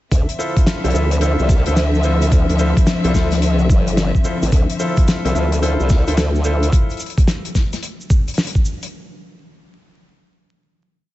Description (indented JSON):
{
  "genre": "glitch hop",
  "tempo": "109 BPM",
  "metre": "4/4",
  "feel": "swing 64% on 16ths",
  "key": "D minor",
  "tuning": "A4 = 439 Hz",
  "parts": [
    { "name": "dark symphonic string section", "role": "sustained chords", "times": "0.1-6.7 s", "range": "D3 to E5", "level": "-22 LUFS", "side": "left 2 dB", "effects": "sidechain pumping" },
    { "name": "formant-sweep wobble bass", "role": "bass", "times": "0.1-6.7 s", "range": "G1 to D2", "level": "-17 LUFS", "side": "equal", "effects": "chorus" },
    { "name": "damped 70s drum kit", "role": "drums", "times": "0.1-8.9 s", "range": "hi-hat, snare drum", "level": "-24 LUFS", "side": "left 1 dB", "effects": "none" },
    { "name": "electronic kick drum", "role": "drums", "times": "0.1-8.6 s", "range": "none", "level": "-15 LUFS", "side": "equal", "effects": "none" },
    { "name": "tube shaker", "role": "percussion", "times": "0.1-8.9 s", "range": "none", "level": "-35 LUFS", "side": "right 2 dB", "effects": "none" },
    { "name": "clear concert grand piano", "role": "stabs", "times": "0.4-7.0 s", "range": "E4 to E5", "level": "-24 LUFS", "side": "equal", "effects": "vintage 12-bit sampler grit, sidechain pumping, ping-pong delay" }
  ],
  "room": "light reverb, small room ambience",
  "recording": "vinyl crackle, nothing above 7.9 kHz",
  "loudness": "-14 LUFS",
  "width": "side -16 dB against mid",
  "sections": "0.1-8.9 drop",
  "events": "drop 0.1-8.9",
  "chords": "0.1 Dm9"
}